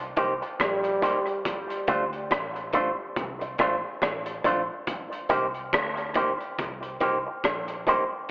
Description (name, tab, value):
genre	dub reggae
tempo	70 BPM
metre	4/4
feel	swing 58% on 16ths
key	C dorian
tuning	A4 = 440 Hz
part	vintage muted fingered electric bass	bass	0.0-7.8 s	A1 to D2	-43 LUFS	equal	none
part	electric guitar with an envelope filter	accompaniment	0.2-8.0 s	A3 to C5	-27 LUFS	right 1 dB	dub echo
part	crunchy breakbeat drum kit	drums	0.2-8.1 s	hi-hat, kick drum, rim click	-29 LUFS	equal	none
part	clear trombone	melody	0.6-1.4 s	G3	-30 LUFS	equal	dub echo
room	wet spring reverb, RT60 2.4 s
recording	telephone sound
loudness	-24 LUFS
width	side -26 dB against mid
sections	0.0-8.3 A section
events	none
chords	0.0 Cm7; 1.4 Dm7; 4.9 Cm7